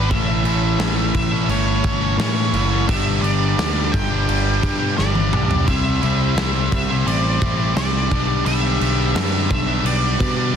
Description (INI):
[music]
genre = quiet-loud alternative rock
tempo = 86 BPM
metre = 4/4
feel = straight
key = unclear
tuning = A4 = 444 Hz
[part]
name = octave-fuzz lead guitar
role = melody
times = 0.0-10.6 s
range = B4 to G5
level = -25 LUFS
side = equal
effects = distortion
[part]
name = distorted electric guitar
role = riff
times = 0.0-10.6 s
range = G2 to C5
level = -26 LUFS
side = left 14 dB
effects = overdrive
[part]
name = distorted electric guitar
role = riff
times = 0.0-10.6 s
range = G2 to C5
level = -26 LUFS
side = right 14 dB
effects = overdrive
[part]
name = picked electric bass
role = bass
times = 0.0-10.6 s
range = F#1 to B2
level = -21 LUFS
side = equal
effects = none
[part]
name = crunchy overdriven guitar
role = riff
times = 0.1-10.5 s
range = G2 to C4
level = -26 LUFS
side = left 2 dB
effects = none
[part]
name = big rock drum kit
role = drums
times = 0.1-10.4 s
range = crash cymbal, kick drum, snare drum, toms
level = -23 LUFS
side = equal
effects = none
[sound]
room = little or no reverb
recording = dense, heavily limited modern master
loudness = -16 LUFS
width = side -8 dB against mid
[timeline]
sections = 0.0-10.6 A section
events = drum fill 5.0-5.7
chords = 0.1 A; 2.9 G; 5.7 Cadd9; 8.1 G/B